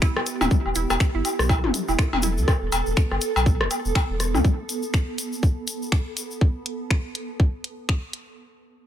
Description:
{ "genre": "minimal techno", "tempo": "122 BPM", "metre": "4/4", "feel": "swing 59% on 16ths", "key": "E minor", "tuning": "A4 = 435 Hz", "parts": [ { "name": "resonant blip pluck", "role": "riff", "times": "0.0-2.3 s", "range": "E4", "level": "-31 LUFS", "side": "right 9 dB", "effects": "chorus, sidechain pumping, dub echo" }, { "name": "electronic kick drum", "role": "drums", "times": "0.0-8.0 s", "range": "none", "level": "-20 LUFS", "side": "equal", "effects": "overdrive" }, { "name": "garage drum kit", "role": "drums", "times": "0.0-8.2 s", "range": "finger snaps, hi-hat", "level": "-29 LUFS", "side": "equal", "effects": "overdrive" }, { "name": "egg shaker", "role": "percussion", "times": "0.0-6.4 s", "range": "none", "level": "-34 LUFS", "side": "left 3 dB", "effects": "none" }, { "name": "granular cloud pad", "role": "texture", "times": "0.0-6.4 s", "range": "B3 to A4", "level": "-31 LUFS", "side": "right 3 dB", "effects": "built-in reverb, sidechain pumping" }, { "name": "organic electronic drum kit", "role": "percussion", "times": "0.2-4.4 s", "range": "cowbell, rim click, toms, woodblock", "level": "-25 LUFS", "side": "left 2 dB", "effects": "none" }, { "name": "saturated sub bass", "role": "bass", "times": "0.4-4.4 s", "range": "D1 to E2", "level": "-25 LUFS", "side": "equal", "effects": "sidechain pumping" } ], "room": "little or no reverb", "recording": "none", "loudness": "-21 LUFS", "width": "side -10 dB against mid", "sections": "0.0-8.4 A section", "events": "drop 0.0-8.4", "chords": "0.0 E5", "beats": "0.02 | 0.51 1.00 1.50 1.99 | 2.48 2.97 3.46 3.95 | 4.45 4.94 5.43 5.92 | 6.41 6.91 7.40 7.89" }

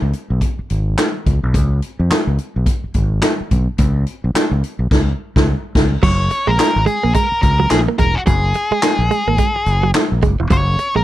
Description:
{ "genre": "funk", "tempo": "107 BPM", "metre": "4/4", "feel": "swing 60% on 16ths", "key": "unclear", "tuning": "A4 = 440 Hz", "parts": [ { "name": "overdriven fingered electric bass", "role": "bass", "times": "0.0-11.0 s", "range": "Fb1 to F2", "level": "-16 LUFS", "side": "equal", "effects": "none" }, { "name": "swinging big-band drum kit", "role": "drums", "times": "0.1-10.9 s", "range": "crash cymbal, handclaps, hi-hat, kick drum, snare drum", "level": "-17 LUFS", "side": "equal", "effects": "none" }, { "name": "octave-fuzz lead guitar", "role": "melody", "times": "6.0-11.0 s", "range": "Gb4 to Db5", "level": "-18 LUFS", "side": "left 1 dB", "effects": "distortion" }, { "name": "direct-recorded clean electric guitar", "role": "riff", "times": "6.0-11.0 s", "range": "Fb3 to Bb3", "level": "-20 LUFS", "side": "right 8 dB", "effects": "none" } ], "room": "little or no reverb", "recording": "none", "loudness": "-14 LUFS", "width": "side -14 dB against mid", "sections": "0.0-6.0 A section; 6.0-11.0 B section", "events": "band accent 4.9-6.0; silent gap 5.5-6.0", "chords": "0.0 Db7(no3); 6.0 Gbadd9", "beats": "0.41 0.98 | 1.54 2.10 2.67 3.23 | 3.79 4.35 4.91 5.47 | 6.03 6.59 7.15 7.71 | 8.27 8.83 9.39 9.94 | 10.50" }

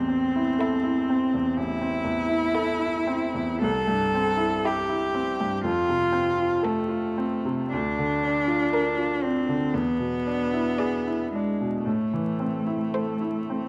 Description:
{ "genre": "classical, slow romantic movement for piano trio", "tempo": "53-63 BPM", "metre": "4/4", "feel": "rubato", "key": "A minor", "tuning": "A4 = 439 Hz", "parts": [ { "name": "rich cello", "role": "second line", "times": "0.0-13.7 s", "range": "G#3 to A4", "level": "-28 LUFS", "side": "equal", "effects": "none" }, { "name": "bright baby grand piano", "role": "accompaniment", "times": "0.0-13.7 s", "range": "A1 to Bb4", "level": "-29 LUFS", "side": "equal", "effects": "none" }, { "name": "rich violin", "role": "melody", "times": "0.6-13.7 s", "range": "E4 to D5", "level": "-36 LUFS", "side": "equal", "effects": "none" } ], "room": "light reverb", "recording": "close, detailed microphones, vinyl crackle", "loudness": "-25 LUFS", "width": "mono", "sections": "0.0-13.7 A section", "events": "none", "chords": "0.0 Am; 3.6 C; 5.6 F; 7.7 Bb/D; 9.7 E7; 11.8 Am", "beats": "0.58 1.55 2.54 | 3.62 4.64 5.63 6.63 | 7.72 8.73 9.73 10.79 | 11.85 12.94" }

